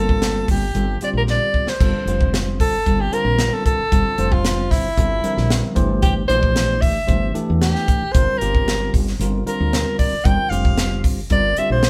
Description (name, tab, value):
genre	electric jazz fusion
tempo	114 BPM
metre	4/4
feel	straight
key	G dorian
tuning	A4 = 443 Hz
part	clear soprano saxophone	melody	0.0-11.9 s	E4 to G5	-24 LUFS	equal	none
part	bell-like tine electric piano	accompaniment	0.0-11.9 s	D3 to D5	-27 LUFS	equal	none
part	woody fretless electric bass	bass	0.0-11.9 s	F1 to E2	-24 LUFS	equal	none
part	crisp fusion drum kit	drums	0.1-11.9 s	crash cymbal, hi-hat, kick drum, snare drum	-22 LUFS	equal	none
room	moderate studio reverb, RT60 0.9 s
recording	band playing live in one room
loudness	-19 LUFS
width	mono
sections	0.0-1.8 A section; 1.8-11.9 A section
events	drum fill 1.3-1.8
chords	0.0 Bb6/G; 1.8 Gm11; 5.8 C7/G; 8.1 Bb6/G; 10.3 Gm7